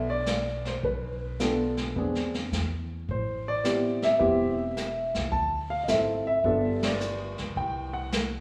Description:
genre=jazz piano trio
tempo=107 BPM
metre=4/4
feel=swing 68% on 8ths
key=E minor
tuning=A4 = 440 Hz
part: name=warm concert grand piano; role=melody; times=0.0-8.4 s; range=B3 to A5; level=-29 LUFS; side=equal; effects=none
part: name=upright bass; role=bass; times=0.0-8.4 s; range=E1 to E2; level=-36 LUFS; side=equal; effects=none
part: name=vintage brush drum kit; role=drums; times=0.3-8.4 s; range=brushed snare drum, hi-hat, kick drum, ride cymbal, snare drum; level=-36 LUFS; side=equal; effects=none
room=wet recital hall reverb, RT60 1.4 s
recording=recorded in a church or concert hall, studio reverb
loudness=-28 LUFS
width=mono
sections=0.0-8.4 A section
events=band accent 6.7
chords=0.0 E7(no3) (rootless); 2.0 E7b13; 3.1 Am9; 5.3 Dm7; 6.4 G9; 7.6 C5

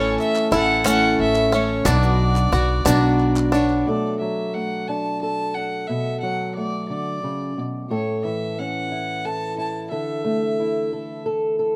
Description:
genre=indie folk with a building arrangement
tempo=60 BPM (dotted quarters)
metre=6/8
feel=straight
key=B minor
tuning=A4 = 440 Hz
part: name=warm fiddle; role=melody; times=0.0-11.2 s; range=C#5 to A5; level=-28 LUFS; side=equal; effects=none
part: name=picked twelve-string acoustic guitar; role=accompaniment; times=0.0-3.9 s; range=A2 to C#5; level=-23 LUFS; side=equal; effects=none
part: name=bluegrass banjo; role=arpeggios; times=0.0-3.9 s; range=C#4 to F#4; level=-28 LUFS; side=equal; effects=none
part: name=upright bass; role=bass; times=0.0-3.8 s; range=A1 to B1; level=-24 LUFS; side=equal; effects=none
part: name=group handclap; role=percussion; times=0.0-3.8 s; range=none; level=-36 LUFS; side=equal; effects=none
part: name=cajon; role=drums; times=0.2-3.6 s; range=none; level=-33 LUFS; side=equal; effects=none
part: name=egg shaker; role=percussion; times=0.2-3.6 s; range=none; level=-36 LUFS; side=equal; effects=none
part: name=fingerpicked old ladder-braced acoustic guitar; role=accompaniment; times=3.9-11.8 s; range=A2 to A4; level=-27 LUFS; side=equal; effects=none
room=light reverb, small room ambience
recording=rough home demo mix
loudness=-22 LUFS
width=mono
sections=0.0-3.9 A section; 3.9-11.8 B section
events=none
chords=0.0 A; 1.9 Bmadd9; 3.9 Bm7; 7.9 A; 9.9 Dsus2

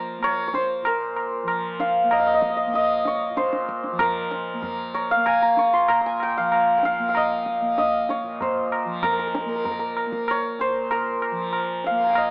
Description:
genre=indian classical, Hindustani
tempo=96 BPM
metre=4/4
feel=straight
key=Bb raga bhimpalasi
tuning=A4 = 440 Hz
part: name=santur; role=melody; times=0.0-12.3 s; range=Bb4 to Db6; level=-21 LUFS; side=equal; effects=none
part: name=tanpura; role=drone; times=0.0-12.3 s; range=Bb2 to Bb3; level=-32 LUFS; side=equal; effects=none
part: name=tabla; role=percussion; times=0.2-12.3 s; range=none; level=-26 LUFS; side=right 1 dB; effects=none
room=light reverb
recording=AM radio sound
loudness=-20 LUFS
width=side -29 dB against mid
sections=0.0-12.3 A section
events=none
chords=none

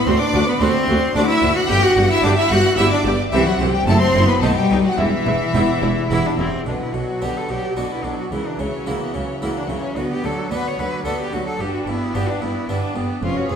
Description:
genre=classical, baroque-style concerto movement with solo episodes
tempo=110 BPM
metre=3/4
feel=straight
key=E minor, B minor from 6.7 s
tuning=A4 = 440 Hz
part: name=clear cello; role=melody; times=0.0-13.6 s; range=E3 to C#5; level=-22 LUFS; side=left 1 dB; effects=none
part: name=rich studio violin section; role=melody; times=0.0-13.6 s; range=B4 to G6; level=-27 LUFS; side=left 3 dB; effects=none
part: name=clear chamber violin section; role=second line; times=0.0-13.6 s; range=E4 to G5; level=-26 LUFS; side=left 1 dB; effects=none
part: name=harpsichord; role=accompaniment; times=0.0-13.6 s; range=D2 to A4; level=-26 LUFS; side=equal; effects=none
part: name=rich chamber viola section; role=accompaniment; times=0.1-13.6 s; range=D3 to G4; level=-26 LUFS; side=right 1 dB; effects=none
part: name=clear symphonic cello section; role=bass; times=0.1-13.6 s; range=D2 to D3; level=-26 LUFS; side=right 1 dB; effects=none
part: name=rich symphonic double bass section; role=bass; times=0.1-13.6 s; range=E1 to D2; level=-24 LUFS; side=right 2 dB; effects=none
room=wet recital hall reverb, RT60 1.7 s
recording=heard from further back in the room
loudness=-16 LUFS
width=side -7 dB against mid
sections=0.0-6.7 A section; 6.7-13.6 B section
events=none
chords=0.1 D7; 1.7 G; 3.3 C; 3.9 F#m7b5; 4.4 B; 5.0 Em; 6.7 Bm; 8.3 F#7/C#; 10.0 Bm/D; 11.6 G

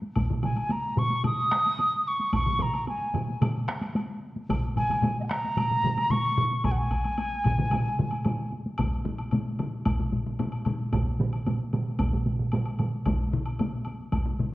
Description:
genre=japanese traditional, taiko drum ensemble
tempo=112 BPM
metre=4/4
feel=straight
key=Ab suspended pentatonic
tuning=A4 = 441 Hz
part: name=taiko ensemble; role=percussion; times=0.0-14.5 s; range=none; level=-32 LUFS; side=equal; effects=none
part: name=solo taiko drums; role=percussion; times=0.2-14.3 s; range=none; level=-32 LUFS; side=equal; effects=none
part: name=taiko ensemble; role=percussion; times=0.2-14.5 s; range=none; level=-31 LUFS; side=left 2 dB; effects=none
part: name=taiko ensemble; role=percussion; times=0.2-12.9 s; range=none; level=-29 LUFS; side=right 2 dB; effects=none
part: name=woodblock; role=percussion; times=0.2-14.2 s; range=none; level=-41 LUFS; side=left 1 dB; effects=none
part: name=mellow hollow wooden piccolo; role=melody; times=0.4-8.5 s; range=Eb5 to Eb6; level=-27 LUFS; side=equal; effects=none
room=wet recital hall reverb, RT60 1.5 s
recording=worn, warbling old tape, cassette tape, warbly pitch drift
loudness=-25 LUFS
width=side -17 dB against mid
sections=0.0-8.8 A section; 8.8-14.5 B section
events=none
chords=none

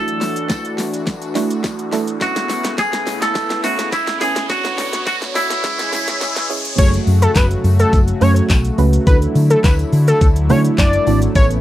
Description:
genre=dance-pop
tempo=105 BPM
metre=4/4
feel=straight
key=unclear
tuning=A4 = 440 Hz
part: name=twangy electric guitar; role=melody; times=0.0-6.5 s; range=E4 to A4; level=-20 LUFS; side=right 1 dB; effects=slapback echo
part: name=soft round pluck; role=accompaniment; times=0.0-11.6 s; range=G#3 to B4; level=-23 LUFS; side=right 7 dB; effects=chorus, sidechain pumping
part: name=warm analog pad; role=sustained chords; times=0.0-11.6 s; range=C#3 to C#5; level=-24 LUFS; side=left 2 dB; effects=chorus, sidechain pumping
part: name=riser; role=sound effects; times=0.4-6.8 s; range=none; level=-28 LUFS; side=right 1 dB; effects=none
part: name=pop drum kit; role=drums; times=0.1-11.6 s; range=crash cymbal, handclaps, hi-hat, kick drum, shaker, snare drum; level=-18 LUFS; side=left 1 dB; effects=none
part: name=tambourine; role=percussion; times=0.2-11.5 s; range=none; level=-39 LUFS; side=left 13 dB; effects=none
part: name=fat analog lead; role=melody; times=6.8-11.5 s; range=A4 to D5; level=-18 LUFS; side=left 1 dB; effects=chorus, sidechain pumping, slapback echo
part: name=hollow-body short-scale fingered electric bass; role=bass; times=6.8-11.6 s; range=F#1 to D3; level=-15 LUFS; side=equal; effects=sidechain pumping
room=little or no reverb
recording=dry, close 1970s-style studio recording, high-pass filter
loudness=-14 LUFS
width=side -13 dB against mid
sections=0.0-6.8 A section; 6.8-11.6 B section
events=build-up 0.0-6.8; drum fill 0.0-6.8; filter sweep 0.0-6.8; riser 0.4-6.8; drop 6.8-11.6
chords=0.0 Dadd9; 2.2 Aadd9; 4.5 Bmadd9; 5.6 C#m; 6.8 F#madd9; 9.1 Dadd9

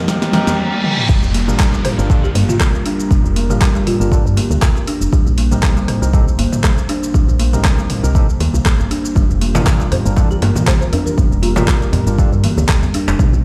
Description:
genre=afro house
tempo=119 BPM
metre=4/4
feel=swing 55% on 16ths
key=G minor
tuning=A4 = 441 Hz
part: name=dark analog pad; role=sustained chords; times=0.0-13.4 s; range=G3 to C5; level=-30 LUFS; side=equal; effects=chorus, sidechain pumping
part: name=tine electric piano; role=stabs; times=0.0-12.3 s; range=C4 to Bb4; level=-28 LUFS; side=equal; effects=sidechain pumping, digital delay
part: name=riser, reverse cymbal and downlifter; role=sound effects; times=0.0-5.1 s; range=none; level=-26 LUFS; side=equal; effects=none
part: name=kalimba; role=arpeggios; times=0.1-13.3 s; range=D3 to D4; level=-24 LUFS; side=equal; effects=sidechain pumping, digital delay
part: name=deep house drum kit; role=drums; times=0.1-13.4 s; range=crash cymbal, handclaps, hi-hat, rim click, shaker, snare drum, toms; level=-24 LUFS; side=equal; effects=none
part: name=electronic kick drum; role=drums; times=0.1-13.3 s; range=none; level=-17 LUFS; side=equal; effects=high-pass filter on kick, high-pass filter on room
part: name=congas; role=percussion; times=0.3-0.4, 9.2-13.3 s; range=none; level=-25 LUFS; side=equal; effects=none
part: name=djembe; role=percussion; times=0.5-0.6, 9.5-13.2 s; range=none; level=-24 LUFS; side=equal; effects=none
part: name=woody FM bass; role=bass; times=1.1-13.4 s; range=F1 to G2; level=-20 LUFS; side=equal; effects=sidechain pumping
part: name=folk marimba with soft mallets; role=melody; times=1.8-4.1, 9.9-11.6 s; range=F4 to C5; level=-27 LUFS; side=equal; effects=digital delay
room=light reverb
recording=played on a big sound system in a bare room, large studio reverb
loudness=-15 LUFS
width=mono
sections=0.0-1.1 A section; 1.1-13.4 B section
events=build-up 0.0-1.1; drum fill 0.0-0.6, 0.7-1.1; riser 0.0-1.1; filter sweep on kalimba 0.0-1.1; filter sweep on tine electric piano 0.0-1.1; reverse cymbal 0.1-1.1; drop 1.1-13.4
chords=0.0 Cm7; 1.1 Gm7; 5.1 Cm7; 9.2 Gm7

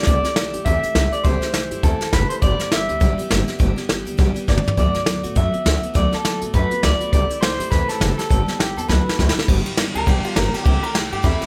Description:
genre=rockabilly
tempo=204 BPM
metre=4/4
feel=swing 59% on 8ths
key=G major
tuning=A4 = 438 Hz
part: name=electric guitar through a small old amp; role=melody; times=0.0-11.5 s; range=E4 to E5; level=-26 LUFS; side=equal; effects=spring reverb, tape echo
part: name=picked steel-string acoustic guitar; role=accompaniment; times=0.0-11.5 s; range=G2 to G4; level=-29 LUFS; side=equal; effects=none
part: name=jazz brush drum kit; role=drums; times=0.0-11.5 s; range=crash cymbal, hi-hat, kick drum, ride cymbal, snare drum, toms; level=-22 LUFS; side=equal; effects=none
part: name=upright bass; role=bass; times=0.1-11.4 s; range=F#1 to A2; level=-24 LUFS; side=equal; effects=none
room=light reverb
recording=none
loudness=-19 LUFS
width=mono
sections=0.0-9.5 A section; 9.5-11.5 B section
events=drum fill 4.5, 8.9-9.5; clean electric guitar solo 9.5-11.5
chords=0.1 C6; 2.4 G6; 4.8 D6; 7.1 C6; 8.3 G6; 8.9 D6; 9.5 G6; 10.6 C6

